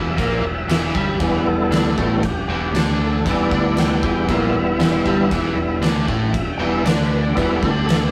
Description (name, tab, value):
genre	blues rock power trio and southern rock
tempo	117 BPM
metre	4/4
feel	straight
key	E minor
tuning	A4 = 440 Hz
part	overdriven tonewheel organ	sustained chords	0.0-8.1 s	G3 to G5	-24 LUFS	equal	chorus vibrato, fast rotary speaker
part	overdriven electric guitar	riff	0.0-8.1 s	E2 to D4	-26 LUFS	equal	none
part	growling fingered electric bass	bass	0.0-8.1 s	E1 to D2	-25 LUFS	equal	overdrive
part	oversized low-tuned drum kit	drums	0.2-8.0 s	crash cymbal, kick drum, snare drum	-24 LUFS	equal	none
room	wet small room reverb, RT60 0.6 s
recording	rough rehearsal-room recording, warm saturation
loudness	-19 LUFS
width	mono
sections	0.0-8.1 A section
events	tonewheel organ solo 0.0-8.1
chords	0.0 Em